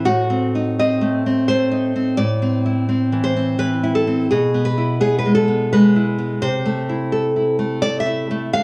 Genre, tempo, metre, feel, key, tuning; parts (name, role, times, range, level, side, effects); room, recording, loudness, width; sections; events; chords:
romantic piece for solo classical guitar; 85 BPM; 3/4; rubato; A minor; A4 = 439 Hz
nylon-string guitar; solo; 0.0-8.6 s; A2 to F5; -18 LUFS; equal
moderate recital hall reverb, RT60 1.7 s; worn, warbling old tape, cassette tape, warbly pitch drift; -19 LUFS; mono
0.0-8.6 A section
0.1 Adim7; 2.2 Am; 4.3 E/B; 6.4 Am/C